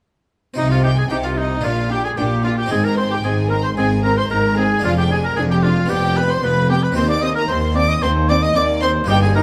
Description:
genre	classical, baroque-style concerto movement with solo episodes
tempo	113 BPM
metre	4/4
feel	straight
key	C minor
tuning	A4 = 440 Hz
part	harpsichord	accompaniment	0.5-9.4 s	Eb2 to Ab4	-30 LUFS	equal	none
part	rich chamber violin section	melody	0.6-9.4 s	Eb5 to Eb6	-28 LUFS	equal	none
part	warm oboe	melody	0.6-9.4 s	Eb4 to Eb5	-25 LUFS	equal	none
part	rich chamber violin section	second line	0.6-9.4 s	Eb4 to Eb5	-26 LUFS	equal	none
part	rich studio viola section	accompaniment	0.6-9.4 s	B3 to Eb4	-30 LUFS	equal	none
part	rich chamber double bass section	bass	0.6-9.4 s	F1 to Eb2	-25 LUFS	equal	none
part	warm chamber cello section	bass	0.6-9.4 s	Eb2 to C3	-23 LUFS	equal	none
room	light reverb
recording	close, detailed microphones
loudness	-18 LUFS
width	mono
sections	0.6-9.4 A section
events	none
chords	0.6 Cm; 1.6 Bb6; 2.7 Ab; 4.8 Ddim/F; 5.9 G7/F; 7.0 Cm/Eb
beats	| 0.57 1.10 1.64 2.17 | 2.71 3.24 3.77 4.31 | 4.84 5.37 5.90 6.43 | 6.96 7.49 8.02 8.55 | 9.08

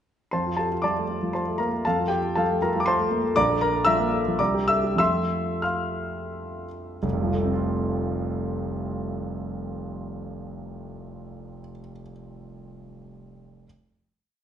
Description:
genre	classical, romantic character piece for solo piano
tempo	81-123 BPM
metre	3/4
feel	rubato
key	F major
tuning	A4 = 440 Hz
part	warm concert grand piano	solo	0.3-13.7 s	F1 to F6	-24 LUFS	equal	none
room	wet recital hall reverb, RT60 1.5 s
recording	nothing above 11.0 kHz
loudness	-23 LUFS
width	side -9 dB against mid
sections	0.3-7.0 A section; 7.0-11.4 final chord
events	slowing down 2.6-7.0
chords	0.3 F; 3.3 Bbmaj7; 4.4 C9; 5.0 F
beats	| 0.32 0.83 1.34 | 1.84 2.34 2.84 | 3.33 3.85 4.38 | 4.98 5.63 6.31 | 7.03 7.74 8.46 | 9.19 9.90 10.64

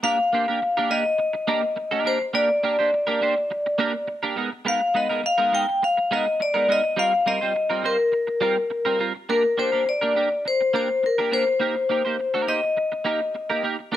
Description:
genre	disco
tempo	104 BPM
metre	4/4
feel	straight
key	Eb major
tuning	A4 = 441 Hz
part	vibraphone with hard mallets	melody	0.0-14.0 s	Bb4 to G5	-21 LUFS	left 2 dB	none
part	clean electric guitar	accompaniment	0.0-14.0 s	G3 to C5	-26 LUFS	right 4 dB	analog chorus
room	moderate large studio reverb, RT60 0.9 s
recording	none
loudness	-20 LUFS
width	side -12 dB against mid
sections	0.0-9.3 A section; 9.3-14.0 B section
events	none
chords	0.0 Ebmaj7; 4.4 Abmadd9; 7.0 Eb69; 9.3 Bb69; 11.6 Cm7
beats	| 0.04 0.62 1.20 1.77 | 2.35 2.93 3.50 4.08 | 4.66 5.24 5.82 6.39 | 6.97 7.55 8.13 8.71 | 9.29 9.86 10.44 11.02 | 11.60 12.18 12.76 13.34 | 13.92

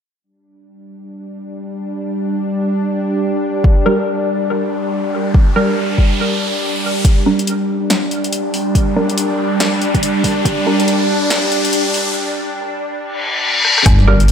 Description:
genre	deep dubstep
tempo	141 BPM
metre	4/4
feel	swing 61% on 16ths, half-time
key	G minor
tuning	A4 = 440 Hz
part	bowed-like drone	sustained chords	1.0-14.3 s	G3 to D4	-18 LUFS	equal	built-in reverb
part	electronic kick drum	drums	3.6-10.6, 13.9-14.0 s	none	-13 LUFS	equal	overdrive
part	riser, reverse cymbal and impact	sound effects	4.4-14.3 s	none	-20 LUFS	left 1 dB	none
part	filtered dub chord stab	stabs	3.9-10.8, 14.1-14.2 s	G3 to Bb4	-20 LUFS	right 1 dB	phaser, dub echo
part	deep house drum kit	drums	7.0-14.3 s	hi-hat, rim click, snare drum, woodblock	-20 LUFS	left 1 dB	overdrive, high-pass filter on hats, high-pass filter on snare, high-pass filter on perc, high-pass filter on room
part	dark detuned saw bass	bass	13.9-14.3 s	G1	-10 LUFS	equal	none
room	moderate lush hall reverb, RT60 2.0 s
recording	dreamy mix soaked in reverb, high-pass filter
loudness	-13 LUFS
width	side -7 dB against mid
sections	0.2-7.0 A section; 7.0-13.9 B section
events	filter sweep on synth drone 0.2-7.0, 7.0-13.9; riser 4.4-7.0, 7.0-12.2; build-up 7.0-13.9; filter sweep on synth stab 7.0-13.9; filter sweep 7.0-13.9; break 12.2-13.9; reverse cymbal 13.2-13.9; drum fill 13.6; impact 13.9-14.3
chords	0.2 G5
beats	| 0.24 0.67 1.09 1.52 | 1.94 2.37 2.79 3.22 | 3.65 4.07 4.50 4.92 | 5.35 5.77 6.20 6.62 | 7.05 7.47 7.90 8.33 | 8.75 9.18 9.60 10.03 | 10.45 10.88 11.30 11.73 | 12.16 12.58 13.01 13.43 | 13.86 14.28

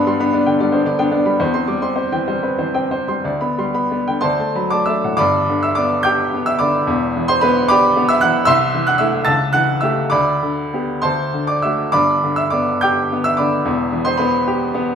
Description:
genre	classical, romantic character piece for solo piano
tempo	59-78 BPM (dotted quarters)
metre	6/8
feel	rubato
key	G major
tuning	A4 = 440 Hz
part	bright baby grand piano	solo	0.0-14.9 s	E1 to A6	-15 LUFS	equal	none
room	wet recital hall reverb, RT60 1.4 s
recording	minimal, uncompressed stereo recording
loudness	-15 LUFS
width	side -7 dB against mid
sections	0.0-5.2 A section; 5.2-14.9 B section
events	none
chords	0.0 G; 1.4 C/E; 3.2 G/D; 4.2 D; 5.2 G; 6.9 Em7; 8.5 Am/C; 9.3 A7/C#; 10.1 G/D; 11.0 D; 11.9 G; 13.7 Em7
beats	0.59 | 1.40 2.28 | 3.25 4.22 | 5.20 6.06 | 6.88 7.70 | 8.48 9.28 | 10.12 11.04 | 11.94 12.83 | 13.66 14.48

